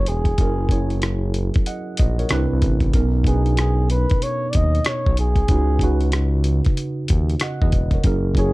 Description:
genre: R&B, neo-soul.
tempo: 94 BPM.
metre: 4/4.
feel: swing 62% on 16ths.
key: unclear.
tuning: A4 = 439 Hz.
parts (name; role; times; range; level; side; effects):
breathy flugelhorn; melody; 0.0-8.5 s; G#4 to D#5; -26 LUFS; equal; plate reverb.
tine electric piano; accompaniment; 0.0-8.5 s; B2 to F#5; -24 LUFS; right 2 dB; lush chorus, plate reverb.
smooth synth bass; bass; 0.0-8.5 s; E1 to E2; -20 LUFS; equal; none.
dusty soul sampler-style drum kit; drums; 0.1-8.5 s; hi-hat, kick drum, rim click; -19 LUFS; equal; none.
room: little or no reverb.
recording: dark, warm production.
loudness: -17 LUFS.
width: side -20 dB against mid.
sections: 0.0-8.5 A section.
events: none.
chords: 0.0 F#9; 2.3 Cmaj9; 2.9 Bmaj9; 5.5 C#7sus4.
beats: | 0.38 1.02 1.66 2.29 | 2.93 3.57 4.21 4.85 | 5.49 6.12 6.76 7.40 | 8.04.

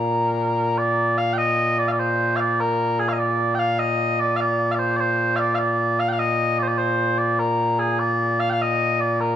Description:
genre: scottish traditional, Scottish pipe music.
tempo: 100 BPM (dotted quarters).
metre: 6/8.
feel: straight.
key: Bb mixolydian.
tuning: A4 = 440 Hz.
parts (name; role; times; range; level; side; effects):
mellow small bagpipes; solo; 0.0-9.4 s; Bb2 to G5; -19 LUFS; equal; none.
room: wet recital hall reverb, RT60 1.7 s.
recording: dark, warm production.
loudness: -19 LUFS.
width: side -10 dB against mid.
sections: 0.8-9.4 A section.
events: none.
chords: none.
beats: 0.19 | 0.79 1.39 | 1.99 2.59 | 3.19 3.79 | 4.39 4.99 | 5.59 6.19 | 6.79 7.39 | 7.99 8.59 | 9.19.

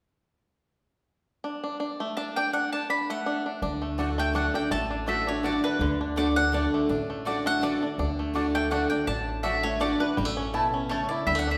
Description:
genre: bluegrass.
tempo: 165 BPM.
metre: 3/4.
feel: swing 54% on 8ths.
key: D major.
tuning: A4 = 440 Hz.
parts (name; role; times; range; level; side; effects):
bluegrass banjo; arpeggios; 1.4-11.6 s; D3 to E4; -33 LUFS; equal; none.
mandolin; melody; 2.2-11.6 s; B4 to B5; -32 LUFS; equal; none.
picked steel-string acoustic guitar; accompaniment; 3.6-11.6 s; A2 to F#4; -32 LUFS; equal; none.
upright bass; bass; 3.6-11.6 s; A1 to D2; -35 LUFS; equal; none.
mandolin; stabs; 4.0-11.0 s; A3 to A5; -36 LUFS; equal; none.
room: wet recital hall reverb, RT60 1.5 s.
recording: recorded in a church or concert hall.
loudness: -27 LUFS.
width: mono.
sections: 1.4-3.6 A section; 3.6-11.6 B section.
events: none.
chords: 1.4 D; 10.2 A.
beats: | 1.44 1.80 2.17 | 2.53 2.90 3.26 | 3.62 3.99 4.35 | 4.71 5.08 5.44 | 5.81 6.17 6.54 | 6.90 7.26 7.63 | 7.99 8.36 8.72 | 9.08 9.45 9.81 | 10.18 10.54 10.90 | 11.27.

